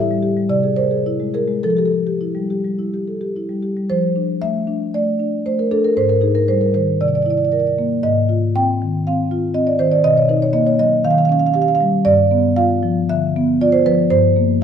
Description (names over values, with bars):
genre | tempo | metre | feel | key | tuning
classical, contemporary piece for solo marimba | 101-122 BPM | 4/4 | rubato | unclear | A4 = 440 Hz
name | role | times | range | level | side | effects
marimba with soft mallets | solo | 0.0-14.6 s | G2 to G5 | -15 LUFS | equal | none
room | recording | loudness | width
moderate recital hall reverb, RT60 1.6 s | dark, warm production | -15 LUFS | side -8 dB against mid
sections
0.0-3.9 A section; 3.9-14.6 A section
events
none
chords
0.0 A7(no3); 0.5 Caug7; 1.6 Fmaj9; 3.9 F6; 6.0 Ab5; 7.0 C9; 8.0 Ab6; 10.1 Bmaj7; 11.1 Eb9; 12.1 G7; 14.1 C7(no3)/G